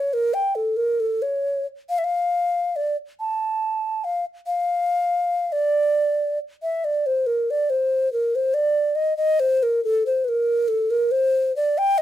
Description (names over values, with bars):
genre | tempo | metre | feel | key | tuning
musette | 139 BPM | 3/4 | straight | unclear | A4 = 442 Hz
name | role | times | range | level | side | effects
mellow hollow alto ocarina | solo | 0.0-12.0 s | A4 to A5 | -20 LUFS | equal | none
room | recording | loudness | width
light reverb | close, detailed microphones | -20 LUFS | side -12 dB against mid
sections
0.0-6.8 A section; 6.8-12.0 B section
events
none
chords
none